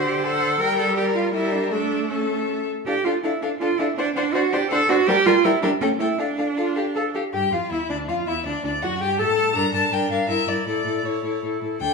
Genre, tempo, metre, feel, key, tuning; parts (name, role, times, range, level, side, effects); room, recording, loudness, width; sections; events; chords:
quick classical-period movement for string quartet; 161 BPM; 3/4; rubato; D minor; A4 = 439 Hz
rich violin; melody; 0.0-11.9 s; C#5 to Bb5; -27 LUFS; left 6 dB
rich violin; second line; 0.0-11.9 s; D4 to C5; -26 LUFS; left 7 dB
rich viola; accompaniment; 0.0-11.9 s; D3 to A4; -26 LUFS; right 2 dB
clear cello; bass; 0.0-11.9 s; D2 to Bb4; -23 LUFS; right 4 dB
moderate large studio reverb, RT60 1.4 s; studio reverb; -20 LUFS; side -4 dB against mid
0.0-7.3 A section; 7.3-11.9 A section
0.0 D7; 0.6 Gm; 1.3 Edim/G; 1.7 A; 2.9 Dm; 4.0 D7; 5.1 N.C.; 5.4 Edim; 5.8 A7(no3); 6.2 Dm; 8.5 D; 9.6 Gm; 10.3 Edim; 10.7 A